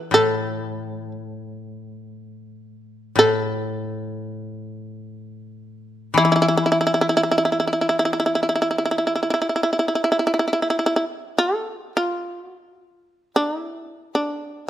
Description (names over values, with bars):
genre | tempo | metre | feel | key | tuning
japanese traditional, Japanese chamber music | 52-61 BPM | 4/4 | rubato | unclear | A4 = 440 Hz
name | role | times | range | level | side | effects
shamisen | melody | 0.0-14.7 s | D4 to B4 | -18 LUFS | right 1 dB | none
koto | accompaniment | 0.0-9.2 s | A2 to E3 | -26 LUFS | left 4 dB | none
room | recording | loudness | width
light reverb | close, detailed microphones | -19 LUFS | side -12 dB against mid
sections
0.0-12.5 A section; 12.5-14.7 B section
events
none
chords
none